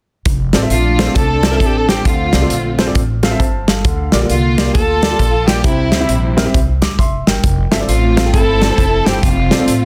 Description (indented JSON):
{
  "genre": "uptempo gospel",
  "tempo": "134 BPM",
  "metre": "4/4",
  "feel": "swing 63% on 8ths",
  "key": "F major",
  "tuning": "A4 = 441 Hz",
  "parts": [
    { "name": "upright bass", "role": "bass", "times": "0.3-9.8 s", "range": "F1 to D2", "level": "-20 LUFS", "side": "equal", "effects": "none" },
    { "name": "modern studio drum kit", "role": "drums", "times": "0.3-9.8 s", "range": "hi-hat, kick drum, snare drum", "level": "-18 LUFS", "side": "equal", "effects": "none" },
    { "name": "warm upright piano", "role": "accompaniment", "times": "0.5-9.7 s", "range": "C3 to D6", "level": "-23 LUFS", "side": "equal", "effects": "none" },
    { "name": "breathy alto saxophone", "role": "melody", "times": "0.7-9.8 s", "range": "E4 to Bb4", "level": "-22 LUFS", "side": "equal", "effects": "none" },
    { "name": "warm symphonic string section", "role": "melody", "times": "0.7-9.8 s", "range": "G3 to A4", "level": "-21 LUFS", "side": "equal", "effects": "none" }
  ],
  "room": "light reverb, small room reverb",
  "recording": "dense, heavily limited modern master",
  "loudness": "-14 LUFS",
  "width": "mono",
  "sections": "0.3-9.8 A section",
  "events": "upright piano fill 3.0-3.8",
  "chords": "0.3 F6; 2.1 Dm7; 3.8 Gm7; 5.6 C; 7.4 Fmaj7; 9.2 Dm7/F",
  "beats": "| 0.26 0.71 1.16 1.61 | 2.05 2.50 2.95 3.40 | 3.85 4.30 4.75 5.20 | 5.64 6.09 6.54 6.99 | 7.44 7.88 8.33 8.78 | 9.23 9.68"
}